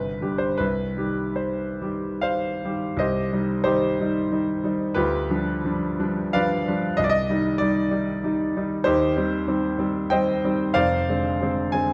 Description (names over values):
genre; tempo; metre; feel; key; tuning
classical, romantic character piece for solo piano; 68-99 BPM; 3/4; rubato; C minor; A4 = 439 Hz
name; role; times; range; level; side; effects
clear grand piano; solo; 0.0-11.9 s; F1 to Ab5; -24 LUFS; equal; none
room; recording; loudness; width
moderate scoring stage reverb, RT60 1.6 s; dark, warm production; -24 LUFS; mono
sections
0.0-3.0 A section; 3.0-11.9 B section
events
none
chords
0.0 G; 0.6 Cm; 5.0 G7/D; 7.0 Cm; 8.9 Cm/Eb; 10.8 Dm7b5/F